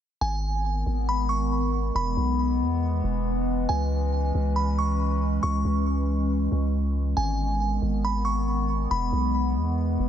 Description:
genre	hip hop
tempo	138 BPM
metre	4/4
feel	half-time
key	C# minor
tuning	A4 = 440 Hz
part	delicate synth tine bell	melody	0.2-9.7 s	G#5 to C#6	-30 LUFS	right 1 dB	chorus, low-pass filter, digital delay
part	warbly tape-like pad	sustained chords	0.6-10.1 s	D#3 to C#4	-28 LUFS	left 1 dB	chorus, built-in reverb
part	long sustained 808-style bass	bass	0.2-10.1 s	E1 to E2	-26 LUFS	equal	none
room	light reverb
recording	none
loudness	-23 LUFS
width	side -9 dB against mid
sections	0.2-10.1 A section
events	none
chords	0.2 G#m; 2.0 E; 3.7 C#m; 7.2 G#m; 8.9 E

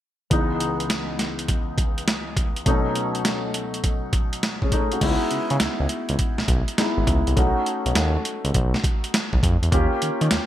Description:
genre	R&B, new jack swing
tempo	102 BPM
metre	4/4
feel	swing 66% on 16ths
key	C# minor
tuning	A4 = 440 Hz
part	dark concert grand piano	accompaniment	0.3-10.5 s	C#2 to G4	-25 LUFS	left 1 dB	wide subtle chorus
part	boom bap sampler-style drum kit	drums	0.3-10.5 s	crash cymbal, hi-hat, kick drum, snare drum	-23 LUFS	equal	overdrive, gated reverb
part	smooth synth bass	bass	5.0-10.4 s	G#1 to D#3	-22 LUFS	equal	none
room	moderate plate reverb, RT60 1.6 s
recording	bright 1980s-style digital production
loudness	-20 LUFS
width	side -12 dB against mid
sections	0.3-5.0 A section; 5.0-10.5 B section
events	none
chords	0.3 C#m7; 2.7 B7; 5.0 C#m7; 7.4 B7; 9.7 D#7

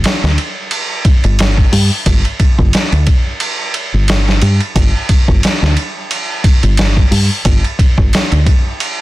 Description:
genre	trip hop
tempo	89 BPM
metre	4/4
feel	swing 56% on 16ths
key	unclear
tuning	A4 = 445 Hz
part	deep dub fingered electric bass	bass	0.0-8.4 s	G1 to G2	-12 LUFS	equal	none
part	trip hop sampler-style drum kit	drums	0.0-9.0 s	hi-hat, kick drum, ride cymbal, snare drum	-12 LUFS	equal	none
room	little or no reverb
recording	dense, heavily limited modern master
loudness	-10 LUFS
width	side -18 dB against mid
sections	0.0-9.0 A section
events	none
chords	none

